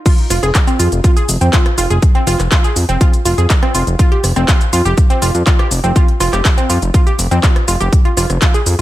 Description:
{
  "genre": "progressive house",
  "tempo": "122 BPM",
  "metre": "4/4",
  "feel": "straight",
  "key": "F minor",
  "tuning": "A4 = 441 Hz",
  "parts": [
    { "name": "wide unison pluck", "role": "arpeggios", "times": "0.1-8.8 s", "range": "C4 to Ab4", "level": "-18 LUFS", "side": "right 1 dB", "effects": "sidechain pumping, dub echo" },
    { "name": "electronic kick drum", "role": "drums", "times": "0.1-8.5 s", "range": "none", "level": "-11 LUFS", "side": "equal", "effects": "overdrive, high-pass filter on kick, high-pass filter on room" },
    { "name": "house drum kit", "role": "drums", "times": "0.1-8.8 s", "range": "crash cymbal, handclaps, hi-hat, rim click, shaker", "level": "-19 LUFS", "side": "equal", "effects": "overdrive, sidechain pumping on hats, sidechain pumping on perc, sidechain pumping on cymbals" },
    { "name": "fat analog bass", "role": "bass", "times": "0.3-8.8 s", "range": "F1 to F2", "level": "-14 LUFS", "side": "equal", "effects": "tube saturation, sidechain pumping, high-pass filter" }
  ],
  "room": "little or no reverb",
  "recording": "none",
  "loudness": "-10 LUFS",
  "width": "side -15 dB against mid",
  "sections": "0.1-8.8 A section",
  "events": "drop 0.1-8.8",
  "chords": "none"
}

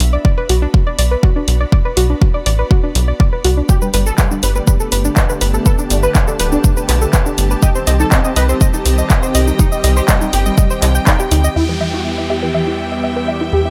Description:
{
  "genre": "melodic techno",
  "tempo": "122 BPM",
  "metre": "4/4",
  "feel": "straight",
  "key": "E minor",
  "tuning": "A4 = 440 Hz",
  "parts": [
    { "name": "tight sequencer bass", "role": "bass", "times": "0.0-13.7 s", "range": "D1 to E2", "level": "-18 LUFS", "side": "equal", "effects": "sidechain pumping" },
    { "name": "deep house drum kit", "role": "drums", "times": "0.0-11.5 s", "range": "handclaps, hi-hat, shaker", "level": "-22 LUFS", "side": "equal", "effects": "low-pass filter on hats, low-pass filter on perc, low-pass filter on snare, low-pass filter on room" },
    { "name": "rich studio string section", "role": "texture", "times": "0.0-13.7 s", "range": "B3 to B5", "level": "-28 LUFS", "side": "equal", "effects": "sidechain pumping" },
    { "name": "soft round pluck", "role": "arpeggios", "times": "0.1-13.7 s", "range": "D4 to G5", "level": "-23 LUFS", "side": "equal", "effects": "chorus, sidechain pumping, digital delay" },
    { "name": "electronic kick drum", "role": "drums", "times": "0.2-11.2 s", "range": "none", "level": "-15 LUFS", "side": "equal", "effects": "none" },
    { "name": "unison lead", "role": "melody", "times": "3.7-13.7 s", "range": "E3 to B4", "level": "-25 LUFS", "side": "equal", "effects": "ensemble chorus, sidechain pumping, digital delay" },
    { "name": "sweeping resonant pad", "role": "sustained chords", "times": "3.7-13.7 s", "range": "D3 to G4", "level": "-26 LUFS", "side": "equal", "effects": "chorus, tremolo, sidechain pumping" },
    { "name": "downlifter", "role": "sound effects", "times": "11.6-13.7 s", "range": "none", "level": "-29 LUFS", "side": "equal", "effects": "none" }
  ],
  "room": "light reverb, digital ambience",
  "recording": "none",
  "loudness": "-14 LUFS",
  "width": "mono",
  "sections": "0.0-11.6 A section; 11.6-13.7 B section",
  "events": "fade-in on string section 0.0-11.6; filter sweep on synth arpeggio sound 11.6-13.7",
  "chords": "0.0 Bm; 3.7 Gadd9; 7.6 Cm; 11.6 Em"
}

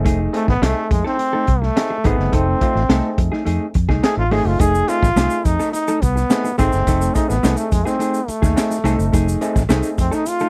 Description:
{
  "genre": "funk",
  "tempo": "106 BPM",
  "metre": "4/4",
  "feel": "straight",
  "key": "F mixolydian",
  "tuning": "A4 = 441 Hz",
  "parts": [
    { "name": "mellow electric guitar", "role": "accompaniment", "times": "0.0-10.5 s", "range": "A3 to A4", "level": "-26 LUFS", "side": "equal", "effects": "none" },
    { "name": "overdriven clav", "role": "stabs", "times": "0.0-10.5 s", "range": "G#3 to A4", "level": "-28 LUFS", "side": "equal", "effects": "none" },
    { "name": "fingered electric bass", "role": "bass", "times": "0.0-10.1 s", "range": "F1 to F2", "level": "-22 LUFS", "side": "equal", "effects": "none" },
    { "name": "crunchy breakbeat drum kit", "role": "drums", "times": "0.1-10.4 s", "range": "hi-hat, kick drum, snare drum", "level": "-22 LUFS", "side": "equal", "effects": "none" },
    { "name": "bright trombone", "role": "melody", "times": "0.4-10.5 s", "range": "G#3 to G#4", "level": "-23 LUFS", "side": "equal", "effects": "none" },
    { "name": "tube shaker", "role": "percussion", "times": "4.6-10.5 s", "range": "none", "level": "-38 LUFS", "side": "equal", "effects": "none" }
  ],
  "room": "little or no reverb",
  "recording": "dry, close 1970s-style studio recording",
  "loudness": "-18 LUFS",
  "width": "mono",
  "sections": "0.0-10.5 A section",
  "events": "trombone solo 0.0-10.5",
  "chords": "0.0 F7#9"
}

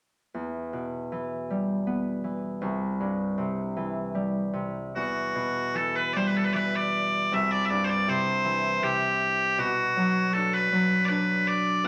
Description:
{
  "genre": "celtic folk, Celtic slow air",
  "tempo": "78 BPM",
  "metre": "3/4",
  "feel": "uneven beats, rubato",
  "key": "E minor",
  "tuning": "A4 = 441 Hz",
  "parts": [
    { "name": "Celtic harp", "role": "accompaniment", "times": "0.3-11.9 s", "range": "C2 to D4", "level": "-30 LUFS", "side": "equal", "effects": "none" },
    { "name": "loud bright bagpipes", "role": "melody", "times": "5.0-11.9 s", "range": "F#4 to E5", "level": "-27 LUFS", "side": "equal", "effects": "none" }
  ],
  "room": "wet large studio reverb, RT60 1.3 s",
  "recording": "none",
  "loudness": "-27 LUFS",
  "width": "mono",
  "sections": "0.3-5.0 A section; 5.0-11.9 B section",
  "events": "none",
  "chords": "0.3 Em; 2.6 C; 5.0 Emadd9; 7.3 C; 9.6 Bm"
}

